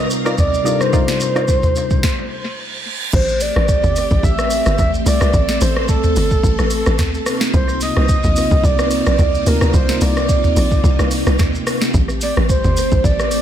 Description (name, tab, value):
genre	amapiano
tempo	109 BPM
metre	4/4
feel	swing 55% on 16ths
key	A minor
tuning	A4 = 440 Hz
part	breathy flute-like synth lead	melody	0.0-13.4 s	A4 to E5	-20 LUFS	right 1 dB	chorus, analog delay
part	tine electric piano	accompaniment	0.0-2.1 s	C3 to Bb4	-22 LUFS	left 5 dB	auto-pan, analog delay
part	string machine, violins	sustained chords	0.0-13.4 s	C3 to D6	-22 LUFS	equal	ensemble chorus
part	punchy chord stab	stabs	0.0-1.5 s	Eb4 to D5	-26 LUFS	right 1 dB	chorus, analog delay
part	smooth R&B drum kit	drums	0.1-13.4 s	crash cymbal, hi-hat, kick drum, rim click, shaker, snare drum, toms	-18 LUFS	equal	analog delay
part	reverse cymbal	sound effects	2.2-3.1 s	none	-26 LUFS	right 5 dB	none
part	tight log drum bass	bass	3.1-13.4 s	G1 to D2	-18 LUFS	equal	none
room	digital ambience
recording	echo-heavy mix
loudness	-13 LUFS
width	side -10 dB against mid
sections	0.0-3.1 A section; 3.1-13.4 B section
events	stop 2.0-3.1; reverse cymbal 2.2-3.1; drop 3.1-13.4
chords	0.0 Cm11; 3.1 Am7; 7.3 Cm11; 11.9 Am7